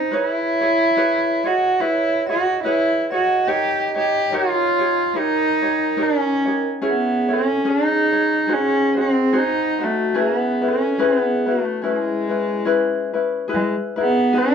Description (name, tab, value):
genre	Hawaiian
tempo	72 BPM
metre	4/4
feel	swing 57% on 8ths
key	C# minor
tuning	A4 = 440 Hz
part	warm cello	melody	0.0-14.5 s	G#3 to G4	-19 LUFS	equal	none
part	vibraphone with medium mallets	second line	0.0-14.5 s	E4 to D#5	-25 LUFS	right 4 dB	none
part	ukulele	accompaniment	0.0-14.5 s	C#4 to D#5	-23 LUFS	left 3 dB	none
room	moderate studio reverb, RT60 0.6 s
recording	dark, warm production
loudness	-17 LUFS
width	side -7 dB against mid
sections	0.0-13.5 A section; 13.5-14.5 B section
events	none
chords	0.1 C#m7; 3.5 D#7; 6.8 C#m; 8.5 G#7; 10.2 C#m7; 13.5 Emaj7